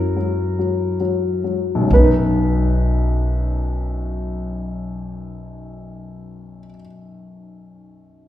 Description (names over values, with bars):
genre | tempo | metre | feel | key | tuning
folk | 64 BPM | 3/4 | straight | B major | A4 = 436 Hz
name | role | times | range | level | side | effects
warm grand piano | melody | 0.0-8.3 s | B1 to B4 | -21 LUFS | left 2 dB | none
upright bass | bass | 0.0-6.7 s | B1 to F#2 | -21 LUFS | equal | none
room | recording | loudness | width
wet recital hall reverb, RT60 1.5 s | recorded in a church or concert hall | -17 LUFS | side -12 dB against mid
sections
0.0-1.9 A section; 1.9-7.5 B section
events
slowing down 0.0-1.9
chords
0.0 F#7; 1.9 B